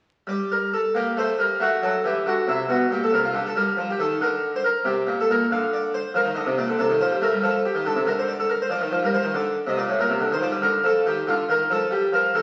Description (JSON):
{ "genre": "classical, baroque-style suite movement for harpsichord", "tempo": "93 BPM (dotted quarters)", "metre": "12/8", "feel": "rubato", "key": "unclear", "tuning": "A4 = 441 Hz", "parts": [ { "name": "harpsichord", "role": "solo", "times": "0.3-12.4 s", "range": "A2 to F5", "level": "-23 LUFS", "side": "equal", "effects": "none" } ], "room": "wet recital hall reverb, RT60 1.4 s", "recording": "very old 78 rpm record, vinyl crackle", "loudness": "-23 LUFS", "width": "mono", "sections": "0.3-12.4 A section", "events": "none", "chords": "0.3 Gm; 1.6 F#dim; 2.9 Gm/Bb; 5.5 Bb/D; 6.8 Adim/C; 8.1 Bb/D; 10.6 Ebmaj9#11/D; 11.9 Gm" }